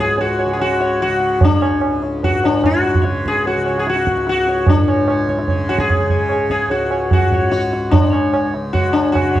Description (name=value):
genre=indian classical, Hindustani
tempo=148 BPM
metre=4/4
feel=straight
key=unclear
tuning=A4 = 439 Hz
part: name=sitar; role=melody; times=0.0-9.4 s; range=D4 to C#5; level=-16 LUFS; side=left 2 dB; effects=none
part: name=tanpura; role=drone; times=0.0-9.4 s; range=C#2 to C#3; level=-24 LUFS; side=equal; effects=none
part: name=tabla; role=percussion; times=0.2-9.4 s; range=none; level=-18 LUFS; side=right 3 dB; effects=none
room=moderate recital hall reverb, RT60 1.3 s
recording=dark, warm production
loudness=-14 LUFS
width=side -13 dB against mid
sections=0.0-7.9 A section; 7.9-9.4 B section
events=none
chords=none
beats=0.19 0.60 1.01 | 1.42 1.82 2.23 2.64 | 3.04 3.45 3.86 4.26 | 4.67 5.08 5.49 5.89 | 6.30 6.70 7.11 7.52 | 7.92 8.33 8.73 9.14